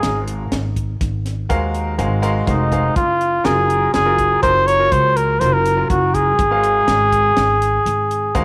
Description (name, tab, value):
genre	progressive instrumental, band music in an uneven meter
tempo	123 BPM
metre	7/4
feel	straight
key	Ab mixolydian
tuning	A4 = 440 Hz
part	mellow trumpet	melody	0.0-8.4 s	Eb4 to Db5	-18 LUFS	equal	none
part	bright concert grand piano	accompaniment	0.0-8.4 s	Gb3 to F5	-26 LUFS	equal	none
part	upright bass	bass	0.0-8.4 s	F1 to Eb2	-23 LUFS	equal	none
part	tight funk drum kit	drums	0.0-8.4 s	hi-hat, kick drum, snare drum	-26 LUFS	equal	none
room	light reverb, studio reverb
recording	none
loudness	-17 LUFS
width	mono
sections	0.0-8.4 A section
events	none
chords	0.0 Ab13; 3.0 Gbmaj7; 6.4 Ab13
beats	0.03 0.52 1.00 1.49 1.98 2.47 | 2.96 3.45 3.94 4.43 4.92 5.41 5.90 | 6.38 6.88 7.36 7.85 8.34